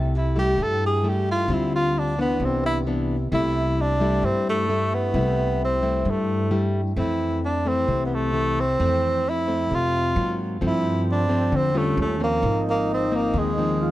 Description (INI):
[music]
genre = bossa nova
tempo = 132 BPM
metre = 4/4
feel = straight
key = C major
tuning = A4 = 438 Hz
[part]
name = breathy tenor saxophone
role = melody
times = 0.0-13.9 s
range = Ab3 to A4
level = -24 LUFS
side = right 1 dB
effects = none
[part]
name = nylon-string guitar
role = accompaniment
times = 0.0-13.9 s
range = F2 to F4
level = -24 LUFS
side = left 2 dB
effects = none
[part]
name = upright bass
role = bass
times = 0.0-13.9 s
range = Ab1 to Ab2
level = -28 LUFS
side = right 1 dB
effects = none
[part]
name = wooden-headed alto flute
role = second line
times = 10.6-13.9 s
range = C4 to F4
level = -29 LUFS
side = right 2 dB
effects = none
[sound]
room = light reverb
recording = none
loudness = -20 LUFS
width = side -15 dB against mid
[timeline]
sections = 0.0-3.3 A section; 3.3-13.9 B section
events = tenor saxophone solo 0.0-3.3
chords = 0.0 C6; 1.5 Dm11; 2.4 Cmaj9; 3.3 C6; 7.0 Fmaj7; 10.2 Ab9; 10.6 G9sus4; 12.0 Eb9; 12.4 Ab69